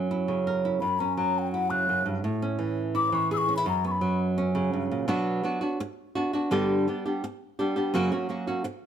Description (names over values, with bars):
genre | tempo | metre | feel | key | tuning
flamenco | 168 BPM | 4/4 | straight | F# phrygian dominant | A4 = 437 Hz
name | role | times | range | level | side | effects
flamenco guitar | melody | 0.0-8.7 s | F#2 to A#4 | -26 LUFS | right 2 dB | plate reverb
mellow hollow wooden flute | second line | 0.8-4.2 s | F#5 to F#6 | -26 LUFS | left 4 dB | none
room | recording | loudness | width
moderate studio reverb, RT60 0.8 s | none | -25 LUFS | side -9 dB against mid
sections
0.0-5.1 A section; 5.1-8.9 B section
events
flute solo 0.0-5.1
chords
0.0 F#7; 2.2 Amaj7; 3.7 F#sus4; 5.1 Bm; 6.5 G; 7.9 F#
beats
0.10 0.46 | 0.81 1.17 1.53 1.88 | 2.24 2.60 2.95 3.31 | 3.67 4.02 4.38 4.74 | 5.09 5.45 5.81 6.16 | 6.52 6.88 7.23 7.59 | 7.95 8.30 8.66